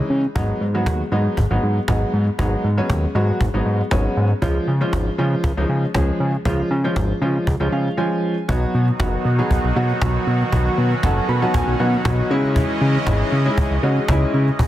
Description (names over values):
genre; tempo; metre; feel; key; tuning
dance-pop; 118 BPM; 4/4; straight; unclear; A4 = 437 Hz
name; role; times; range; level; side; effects
clear concert grand piano; accompaniment; 0.0-14.4 s; E3 to B5; -22 LUFS; equal; none
fat analog bass; bass; 0.1-14.5 s; F#1 to C#3; -19 LUFS; equal; none
cajon; drums; 0.4-14.7 s; none; -23 LUFS; equal; none
supersaw pad; sustained chords; 8.5-14.6 s; B2 to D#5; -24 LUFS; right 1 dB; none
room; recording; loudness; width
light reverb, small room ambience; dense, heavily limited modern master; -17 LUFS; side -13 dB against mid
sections
0.0-8.5 A section; 8.5-14.7 B section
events
grand piano fill 7.5-8.5, 11.0-12.6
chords
0.4 G#m7; 4.4 C#; 8.5 B; 12.3 C#madd9